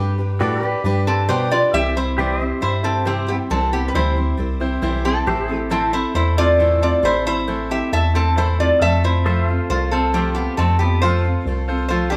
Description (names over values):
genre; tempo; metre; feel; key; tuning
honky-tonk and classic country; 136 BPM; 4/4; straight; C major; A4 = 440 Hz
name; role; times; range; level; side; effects
lap resonator guitar; melody; 0.0-12.2 s; B3 to E5; -22 LUFS; equal; none
picked steel-string acoustic guitar; accompaniment; 0.0-12.2 s; A2 to C5; -28 LUFS; equal; none
bell-like tine electric piano; bass; 0.0-12.2 s; A1 to B2; -23 LUFS; equal; none
bright baby grand piano; accompaniment; 0.4-12.2 s; E4 to D5; -32 LUFS; equal; none
pedal steel guitar; sustained chords; 0.4-12.2 s; G4 to F5; -29 LUFS; equal; none
room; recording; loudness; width
moderate stone room reverb, RT60 1.1 s; band playing live in one room; -19 LUFS; mono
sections
0.0-1.7 A section; 1.7-12.2 B section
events
resonator guitar played with a steel bar solo 0.0-1.7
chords
0.0 G; 1.7 C; 5.3 Am; 8.8 F